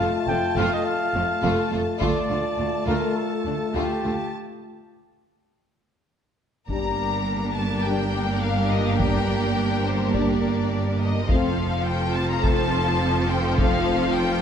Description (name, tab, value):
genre	cinematic, epic orchestral film score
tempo	104 BPM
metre	4/4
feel	straight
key	unclear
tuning	A4 = 440 Hz
part	rich symphonic violin section	melody	0.0-14.4 s	C5 to Bb5	-30 LUFS	left 5 dB	none
part	rich studio violin section	second line	0.0-14.4 s	C4 to C5	-31 LUFS	left 4 dB	none
part	rich symphonic viola section	accompaniment	0.0-14.4 s	F3 to F4	-28 LUFS	right 3 dB	none
part	warm French horn section	sustained chords	0.0-13.8 s	G3 to F4	-29 LUFS	left 4 dB	none
part	warm trumpet	stabs	0.0-4.3 s	G4 to G5	-27 LUFS	right 2 dB	none
part	rich chamber double bass section	bass	0.0-14.4 s	F1 to D2	-28 LUFS	right 2 dB	none
part	rich symphonic cello section	bass	0.0-14.4 s	D2 to G2	-28 LUFS	right 2 dB	none
part	taiko ensemble	drums	2.0-3.1, 6.7-14.1 s	none	-26 LUFS	equal	none
room	moderate scoring stage reverb, RT60 1.7 s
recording	none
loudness	-21 LUFS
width	side -8 dB against mid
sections	0.0-6.7 A section; 6.7-14.4 B section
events	break 4.3-6.7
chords	0.0 F; 2.0 Dm; 6.7 Gm; 11.3 F